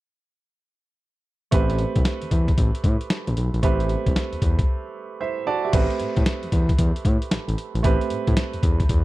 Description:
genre	R&B, new jack swing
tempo	114 BPM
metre	4/4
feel	swing 64% on 16ths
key	A minor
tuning	A4 = 439 Hz
part	clear grand piano	accompaniment	1.5-9.0 s	A3 to A5	-27 LUFS	right 5 dB	none
part	smooth gliding synth bass	bass	1.5-9.0 s	A1 to A2	-23 LUFS	equal	none
part	boom bap sampler-style drum kit	drums	1.5-9.0 s	crash cymbal, hi-hat, kick drum, snare drum	-21 LUFS	equal	none
room	digital ambience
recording	dry, close 1970s-style studio recording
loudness	-20 LUFS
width	side -18 dB against mid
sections	1.5-5.7 A section; 5.7-9.0 B section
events	break 4.7-5.7; grand piano fill 4.9-5.7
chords	1.5 Am9

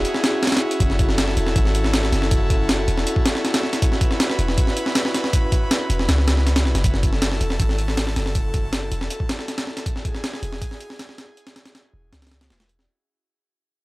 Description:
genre	drum and bass, jungle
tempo	159 BPM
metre	4/4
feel	straight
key	F# minor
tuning	A4 = 440 Hz
part	airy breathy pad	sustained chords	0.0-12.9 s	C#4 to B4	-26 LUFS	equal	chorus
part	warm 808-style bass	bass	0.0-12.9 s	E1 to C#2	-22 LUFS	equal	none
part	jungle sampler-style drum kit	drums	0.0-12.9 s	hi-hat, kick drum, snare drum	-21 LUFS	equal	none
room	digital ambience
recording	dry, gritty hardware recording, transformer saturation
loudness	-18 LUFS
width	side -20 dB against mid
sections	0.0-12.9 A section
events	drop 0.0-12.9; break 0.0-0.8; fade-out 6.8-12.9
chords	0.0 F#m7

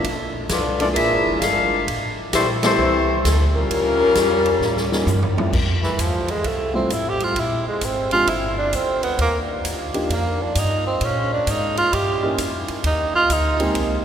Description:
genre	jazz, big band swing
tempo	131 BPM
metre	4/4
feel	swing 65% on 8ths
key	unclear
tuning	A4 = 441 Hz
part	warm upright piano	accompaniment	0.0-14.0 s	E3 to G4	-29 LUFS	equal	none
part	upright bass	bass	0.0-14.0 s	F1 to Bb2	-25 LUFS	equal	none
part	swinging big-band drum kit	drums	0.0-13.9 s	crash cymbal, hi-hat, kick drum, ride cymbal, snare drum, toms	-27 LUFS	equal	none
part	dark saxophone section	melody	0.5-5.0 s	G3 to F5	-20 LUFS	left 3 dB	none
part	mellow trombone section	second line	0.5-5.0 s	Db3 to Bb4	-26 LUFS	equal	none
part	muted trombone section	sustained chords	5.5-14.0 s	C3 to G4	-31 LUFS	left 2 dB	none
part	breathy tenor saxophone	melody	5.8-13.8 s	E3 to G4	-21 LUFS	right 2 dB	none
room	wet cathedral reverb, RT60 4.5 s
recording	recorded in a church or concert hall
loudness	-18 LUFS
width	side -8 dB against mid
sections	0.0-5.5 A section; 5.5-14.0 B section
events	band accent 2.6; drum fill 4.6-5.5; tenor saxophone solo 5.5-14.0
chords	0.0 Bm7b5; 1.0 Bb7#11; 1.9 Am7; 3.7 Eb9; 5.5 Fmaj9; 7.4 Bb13; 9.2 Ebmaj9; 11.0 Bbm7; 11.9 Eb7b9; 12.8 Abmaj9

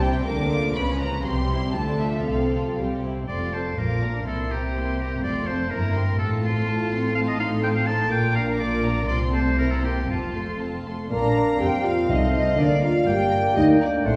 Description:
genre	quick classical-period movement for symphony orchestra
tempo	114-127 BPM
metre	2/4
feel	rubato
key	F major, Bb major from 11.1 s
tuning	A4 = 438 Hz
part	warm studio violin section	melody	0.0-14.0 s	D5 to D6	-37 LUFS	equal	none
part	rich studio violin section	second line	0.0-14.2 s	G3 to Bb5	-33 LUFS	equal	none
part	dark studio viola section	accompaniment	0.0-14.2 s	F3 to Eb4	-32 LUFS	equal	none
part	dark studio double bass section	bass	0.0-14.2 s	F1 to D2	-30 LUFS	equal	none
part	warm studio cello section	bass	0.0-14.2 s	D2 to D3	-30 LUFS	equal	none
part	bright oboe	second line	3.3-14.2 s	F4 to A5	-31 LUFS	equal	none
part	flute section	second line	11.1-14.2 s	C5 to Bb5	-32 LUFS	equal	none
part	mellow clarinet	second line	11.1-14.2 s	C5 to D5	-34 LUFS	equal	none
part	warm bassoon	accompaniment	11.1-14.2 s	A3 to Bb3	-31 LUFS	equal	none
part	mellow French horn section	sustained chords	11.1-14.2 s	C4 to Bb4	-24 LUFS	equal	none
part	timpani	percussion	12.1-12.6 s	C3	-33 LUFS	equal	none
room	wet recital hall reverb, RT60 1.6 s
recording	heard from further back in the room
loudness	-23 LUFS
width	mono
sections	0.0-3.3 A section; 3.3-11.1 B section; 11.1-14.2 A section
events	none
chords	0.3 Bb/D; 0.8 Db7; 1.2 C; 1.7 Dm; 2.3 F/C; 2.8 C; 3.3 F; 3.8 Bb; 4.3 C7; 5.2 F; 5.7 C7/G; 6.2 F/A; 7.2 F7/A; 8.1 Bb; 9.1 F/C; 9.6 C7; 10.1 F; 11.1 Bb; 12.1 F7/C; 12.6 Bb/D; 13.1 Gm

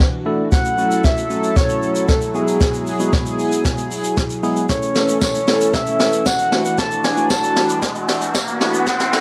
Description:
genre	dance-pop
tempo	115 BPM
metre	4/4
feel	straight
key	unclear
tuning	A4 = 439 Hz
part	chorused pulse-width pad	sustained chords	0.0-9.2 s	E3 to A4	-25 LUFS	equal	sidechain pumping
part	jazz brush drum kit	drums	0.0-9.2 s	hi-hat, kick drum, shaker, snare drum	-22 LUFS	equal	none
part	tine electric piano	accompaniment	0.3-9.2 s	G#3 to A4	-26 LUFS	equal	sidechain pumping
part	soft octave-layered synth lead	melody	0.5-9.2 s	G#4 to A5	-23 LUFS	equal	chorus, analog delay
part	riser	sound effects	6.5-9.2 s	none	-28 LUFS	equal	none
part	tambourine	percussion	5.2-8.5 s	none	-29 LUFS	equal	none
room	light reverb, small room ambience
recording	dry, gritty hardware recording, cassette tape, high-pass filter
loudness	-18 LUFS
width	mono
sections	0.0-9.2 A section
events	build-up 0.0-9.2; drum fill 0.0-9.2; filter sweep 0.0-9.2; riser 6.5-9.2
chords	0.0 Dadd9; 0.5 F#m7; 2.3 Eadd9; 4.7 A; 6.5 Dadd9

